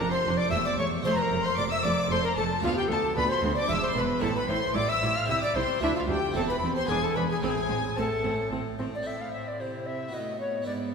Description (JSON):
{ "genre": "classical, baroque-style concerto movement with solo episodes", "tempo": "113 BPM", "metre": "3/4", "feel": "straight", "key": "A minor", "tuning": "A4 = 440 Hz", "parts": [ { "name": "rich chamber violin section", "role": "melody", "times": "0.0-10.9 s", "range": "C5 to F6", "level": "-32 LUFS", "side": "left 3 dB", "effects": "none" }, { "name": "tenor recorder", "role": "melody", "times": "0.0-10.7 s", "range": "E4 to F5", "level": "-30 LUFS", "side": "left 1 dB", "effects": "none" }, { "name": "warm chamber violin section", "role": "second line", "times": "0.0-10.9 s", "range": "E4 to F6", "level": "-34 LUFS", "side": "left 2 dB", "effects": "none" }, { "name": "harpsichord", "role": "accompaniment", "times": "0.0-10.9 s", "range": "D2 to B4", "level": "-36 LUFS", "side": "right 1 dB", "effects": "none" }, { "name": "warm chamber viola section", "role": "accompaniment", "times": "0.0-10.9 s", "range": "A3 to E4", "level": "-35 LUFS", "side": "right 1 dB", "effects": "none" }, { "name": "rich chamber cello section", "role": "bass", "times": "0.0-10.9 s", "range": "D2 to C3", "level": "-34 LUFS", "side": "right 2 dB", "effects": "none" }, { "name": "rich studio double bass section", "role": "bass", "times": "0.0-8.9 s", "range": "E1 to D2", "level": "-35 LUFS", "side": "right 4 dB", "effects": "none" } ], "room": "wet church reverb, RT60 2.6 s", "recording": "recorded in a church or concert hall", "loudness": "-25 LUFS", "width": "side -5 dB against mid", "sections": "0.0-9.1 A section; 9.1-10.9 B section", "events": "none", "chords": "0.0 Dm/F; 0.5 A7/E; 1.1 Bbmaj9#11/F; 2.6 Bdim/D; 3.7 E7; 4.2 Am; 5.3 C; 5.8 Dm; 6.3 Am/E; 6.9 E5; 7.4 Am; 10.1 B7/A" }